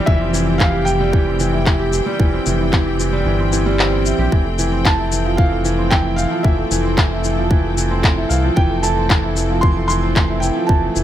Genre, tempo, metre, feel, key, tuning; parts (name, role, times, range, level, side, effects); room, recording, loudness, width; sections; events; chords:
piano and strings electronica; 113 BPM; 4/4; straight; F major; A4 = 440 Hz
clear symphonic string section; sustained chords; 0.0-11.0 s; E3 to G5; -26 LUFS; left 3 dB; sidechain pumping
clear upright piano; riff; 0.0-11.0 s; E3 to C5; -19 LUFS; right 2 dB; digital delay
felt-muted upright piano; melody; 0.1-11.0 s; E5 to C6; -24 LUFS; right 1 dB
round analog bass; bass; 0.1-11.0 s; F1 to C2; -20 LUFS; equal; sidechain pumping
electronic kick drum; drums; 0.1-10.8 s; -15 LUFS; equal
electronic shaker and handclaps; drums; 0.3-11.0 s; -21 LUFS; left 2 dB
light reverb, small room ambience; -14 LUFS; side -11 dB against mid
0.0-11.0 A section
kick drops out 3.3-4.3
0.0 C/F; 4.3 Fmaj7